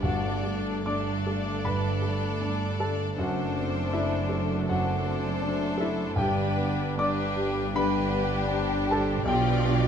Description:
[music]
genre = classical, romantic movement for piano and orchestra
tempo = 79 BPM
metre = 4/4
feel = rubato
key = G major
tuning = A4 = 439 Hz
[part]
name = rich chamber violin section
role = melody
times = 0.0-9.9 s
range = B4 to D5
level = -38 LUFS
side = left 6 dB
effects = none
[part]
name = warm grand piano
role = melody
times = 0.0-9.9 s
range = B1 to D6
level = -28 LUFS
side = left 1 dB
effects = none
[part]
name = rich chamber violin section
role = second line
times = 0.0-9.9 s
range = G4 to A4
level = -36 LUFS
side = left 4 dB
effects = none
[part]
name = rich chamber viola section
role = accompaniment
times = 0.0-9.9 s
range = D4 to F4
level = -36 LUFS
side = right 1 dB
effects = none
[part]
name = mellow French horn section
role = sustained chords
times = 0.0-9.9 s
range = F3 to D4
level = -35 LUFS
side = left 6 dB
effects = none
[part]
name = rich symphonic cello section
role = bass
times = 0.0-9.9 s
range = F#2 to B2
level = -33 LUFS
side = right 3 dB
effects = none
[part]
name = warm symphonic double bass section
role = bass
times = 0.0-9.9 s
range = F#1 to B1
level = -32 LUFS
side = right 5 dB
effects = none
[part]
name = timpani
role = percussion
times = 0.0-1.2, 6.2-7.3 s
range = G2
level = -38 LUFS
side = equal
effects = none
[sound]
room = light reverb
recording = close, detailed microphones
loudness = -25 LUFS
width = side -8 dB against mid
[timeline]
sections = 0.0-9.9 A section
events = none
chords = 0.0 D/G; 3.2 D7/F#; 6.2 G; 9.3 G7/B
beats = | 0.03 0.87 1.65 2.43 | 3.18 3.93 4.68 5.43 | 6.19 7.00 7.76 8.52 | 9.28

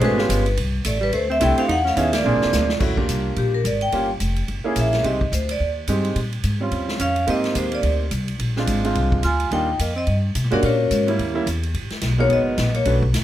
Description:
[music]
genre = jazz, small-group swing and bop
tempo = 215 BPM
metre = 4/4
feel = swing 59% on 8ths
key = Eb major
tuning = A4 = 439 Hz
[part]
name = vibraphone with medium hard mallets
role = melody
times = 0.0-12.9 s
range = Db4 to Ab5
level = -22 LUFS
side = left 1 dB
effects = plate reverb
[part]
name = mellow alto saxophone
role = second line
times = 0.0-2.7, 7.0-12.8 s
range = G3 to F4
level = -27 LUFS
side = right 2 dB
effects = none
[part]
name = bright upright piano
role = accompaniment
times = 0.0-13.0 s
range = G3 to B4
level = -24 LUFS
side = right 3 dB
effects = none
[part]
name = upright bass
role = bass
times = 0.0-13.2 s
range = E#1 to C3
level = -22 LUFS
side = equal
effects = none
[part]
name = swinging big-band drum kit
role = drums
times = 0.0-13.2 s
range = crash cymbal, hi-hat, kick drum, ride cymbal, snare drum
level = -28 LUFS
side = equal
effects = none
[sound]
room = light reverb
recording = none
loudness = -18 LUFS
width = side -12 dB against mid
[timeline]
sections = 0.0-2.8 A section; 2.8-11.7 B section; 11.7-13.2 C section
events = band accent 2.1; drum fill 2.2-2.8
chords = 0.0 C#7#11; 0.6 C6; 1.7 C#m9; 2.2 A#7; 2.8 Ebmaj7; 3.9 Gm7b5; 4.5 Gb9; 5.0 Cmadd9; 6.2 Bbm9; 6.7 Eb13; 7.3 Abmaj9; 8.4 Bb9; 9.5 Ebmaj7; 10.6 Bbm7b5; 11.2 Eb7b9; 11.7 Abm9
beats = 0.01 0.29 | 0.57 0.85 1.13 1.41 | 1.69 1.97 2.25 2.52 | 2.81 3.08 3.36 3.64 | 3.92 4.20 4.48 4.76 | 5.04 5.32 5.60 5.88 | 6.16 6.44 6.72 7.00 | 7.28 7.56 7.84 8.12 | 8.40 8.68 8.96 9.23 | 9.51 9.79 10.07 10.35 | 10.63 10.91 11.19 11.47 | 11.74 12.02 12.30 12.58 | 12.86 13.14

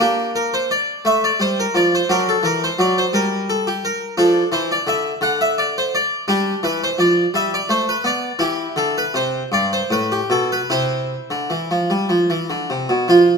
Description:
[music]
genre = classical, baroque-style suite movement for harpsichord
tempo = 49-59 BPM (dotted quarters)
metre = 6/8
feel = rubato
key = C major from 4.2 s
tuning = A4 = 439 Hz
[part]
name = harpsichord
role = solo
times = 0.0-13.4 s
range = G2 to F#5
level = -16 LUFS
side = equal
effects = none
[sound]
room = moderate recital hall reverb, RT60 1.6 s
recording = close, detailed microphones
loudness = -16 LUFS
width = side -5 dB against mid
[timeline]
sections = 0.0-13.1 A section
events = none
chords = 0.0 Gm/Bb; 2.1 D; 3.1 N.C.; 4.2 Dm; 5.2 N.C.; 6.3 G5; 7.3 G; 8.4 C; 9.5 G; 10.7 C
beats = | 0.00 1.05 | 2.09 3.14 | 4.18 5.22 | 6.28 7.34 | 8.41 9.53 | 10.71 11.90 | 13.08

